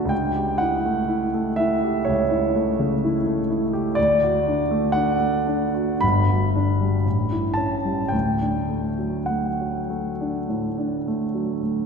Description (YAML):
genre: classical, romantic nocturne for solo piano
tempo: 49-64 BPM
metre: 4/4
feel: rubato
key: D major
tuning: A4 = 440 Hz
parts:
  - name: warm concert grand piano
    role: solo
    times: 0.0-11.9 s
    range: G1 to B5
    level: -20 LUFS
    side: equal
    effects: none
room: wet church reverb, RT60 2.9 s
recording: minimal, uncompressed stereo recording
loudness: -20 LUFS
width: side -6 dB against mid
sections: 0.0-11.9 A section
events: none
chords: 0.1 A7/C#; 4.0 D; 6.0 Gmaj7; 7.1 A7; 8.1 D